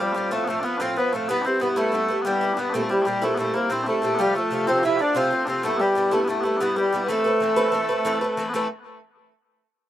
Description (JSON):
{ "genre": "celtic folk, Celtic slip jig", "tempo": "124 BPM (dotted quarters)", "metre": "9/8", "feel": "straight", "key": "A minor", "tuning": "A4 = 440 Hz", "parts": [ { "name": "accordion", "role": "melody", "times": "0.0-8.7 s", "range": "G3 to E4", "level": "-23 LUFS", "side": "equal", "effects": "none" }, { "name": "mellow small bagpipes", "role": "second line", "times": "0.0-8.7 s", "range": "G3 to G4", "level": "-28 LUFS", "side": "left 3 dB", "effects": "slapback echo" }, { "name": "Irish bouzouki", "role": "accompaniment", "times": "0.0-8.7 s", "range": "G2 to B4", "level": "-25 LUFS", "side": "right 1 dB", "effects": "none" } ], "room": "light reverb", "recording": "recorded outdoors, with no room sound", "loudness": "-20 LUFS", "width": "side -12 dB against mid", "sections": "0.0-8.5 A section; 8.5-9.9 B section", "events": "none", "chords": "0.0 F; 1.3 Em; 2.7 C7; 4.2 F; 5.6 Em; 7.1 Amadd9" }